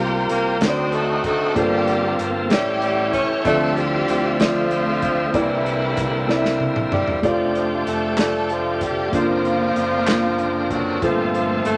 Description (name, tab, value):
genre	slow gospel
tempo	63 BPM (dotted quarters)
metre	6/8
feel	straight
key	F major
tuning	A4 = 436 Hz
part	bright tenor saxophone	melody	0.0-11.8 s	E3 to C#4	-27 LUFS	equal	none
part	warm studio string section	melody	0.0-11.8 s	G3 to C#5	-28 LUFS	equal	none
part	warm concert grand piano	accompaniment	0.0-11.8 s	G2 to E5	-25 LUFS	equal	none
part	bright tonewheel organ	sustained chords	0.0-11.8 s	D3 to E5	-28 LUFS	equal	overdrive, fast rotary speaker
part	fingered electric bass	bass	0.0-11.8 s	F1 to D2	-33 LUFS	equal	none
part	warm soul drum kit	drums	0.3-11.8 s	hi-hat, kick drum, snare drum, toms	-28 LUFS	equal	none
part	group handclap	percussion	8.2-10.4 s	none	-31 LUFS	equal	none
room	wet studio reverb, RT60 0.9 s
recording	none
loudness	-20 LUFS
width	mono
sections	0.0-7.2 A section; 7.2-11.8 B section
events	drum fill 6.3-7.2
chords	0.0 C7sus4; 0.6 D7b9; 1.6 Gm11; 2.5 A7; 3.5 Dm9; 5.3 C9; 7.2 F69; 9.1 D7alt/F#; 11.0 Gm11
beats	0.61 | 1.56 2.50 | 3.45 4.40 | 5.34 6.29 | 7.23 8.18 | 9.13 10.07 | 11.02